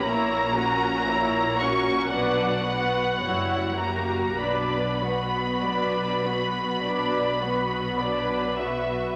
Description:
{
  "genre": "classical, slow romantic movement for string orchestra",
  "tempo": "48-59 BPM",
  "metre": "4/4",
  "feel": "rubato",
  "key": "B minor",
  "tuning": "A4 = 441 Hz",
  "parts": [
    { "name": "muted studio violin section", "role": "melody", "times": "0.0-9.1 s", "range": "E5 to C#6", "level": "-30 LUFS", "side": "equal", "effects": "none" },
    { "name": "muted studio violin section", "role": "second line", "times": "0.0-9.2 s", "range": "F#4 to D5", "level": "-30 LUFS", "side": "equal", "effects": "none" },
    { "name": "muted studio viola section", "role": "accompaniment", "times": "0.0-9.2 s", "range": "F#3 to F#4", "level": "-32 LUFS", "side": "equal", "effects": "none" },
    { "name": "muted studio cello section", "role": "bass", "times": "0.1-8.9 s", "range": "F#2 to B2", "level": "-35 LUFS", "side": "equal", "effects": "none" },
    { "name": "muted studio double bass section", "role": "bass", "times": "0.1-8.9 s", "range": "F#1 to B1", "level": "-37 LUFS", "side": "equal", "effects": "none" }
  ],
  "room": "wet scoring stage reverb, RT60 2.0 s",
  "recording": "none",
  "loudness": "-25 LUFS",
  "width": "mono",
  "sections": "0.0-9.2 A section",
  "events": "none",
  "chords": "0.1 F#7/A#; 2.1 Bm; 3.2 F#7b9; 4.4 Bm",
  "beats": "| 0.05 1.07 2.12 3.22 | 4.40 5.63 6.83 8.01"
}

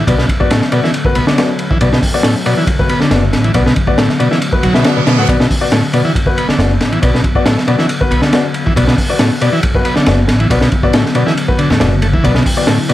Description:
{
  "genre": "breakbeat, breaks",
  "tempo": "138 BPM",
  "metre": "4/4",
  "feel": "straight",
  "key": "B minor pentatonic",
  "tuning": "A4 = 439 Hz",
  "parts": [
    { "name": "warbly tape-like pad", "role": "sustained chords", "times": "0.0-12.9 s", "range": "D3 to E4", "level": "-21 LUFS", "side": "left 2 dB", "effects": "chorus, built-in reverb, sidechain pumping" },
    { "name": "combo organ", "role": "riff", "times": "0.0-12.9 s", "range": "A2 to B3", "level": "-16 LUFS", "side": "equal", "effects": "ping-pong delay" },
    { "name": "upright bass", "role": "bass", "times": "0.0-12.3 s", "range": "F#1 to E2", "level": "-16 LUFS", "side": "equal", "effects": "none" },
    { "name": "warm baby grand piano", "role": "stabs", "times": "0.1-12.9 s", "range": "B3 to F#5", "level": "-18 LUFS", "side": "left 4 dB", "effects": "vintage 12-bit sampler grit, ping-pong delay" },
    { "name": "crunchy breakbeat drum kit", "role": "drums", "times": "0.1-12.9 s", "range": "hi-hat, kick drum, ride cymbal, snare drum", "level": "-14 LUFS", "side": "equal", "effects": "none" },
    { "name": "reverse cymbal", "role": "sound effects", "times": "4.6-5.3 s", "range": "none", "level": "-21 LUFS", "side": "right 6 dB", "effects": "none" }
  ],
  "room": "light reverb",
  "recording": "vinyl crackle",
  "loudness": "-10 LUFS",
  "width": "side -14 dB against mid",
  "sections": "0.0-12.9 A section",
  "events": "reverse cymbal 4.6-5.3",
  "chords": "0.0 Bm",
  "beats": "| 0.07 0.50 0.94 1.37 | 1.81 2.24 2.68 3.11 | 3.55 3.98 4.42 4.85 | 5.29 5.72 6.16 6.59 | 7.03 7.46 7.89 8.33 | 8.76 9.20 9.63 10.07 | 10.50 10.94 11.37 11.81 | 12.24 12.68"
}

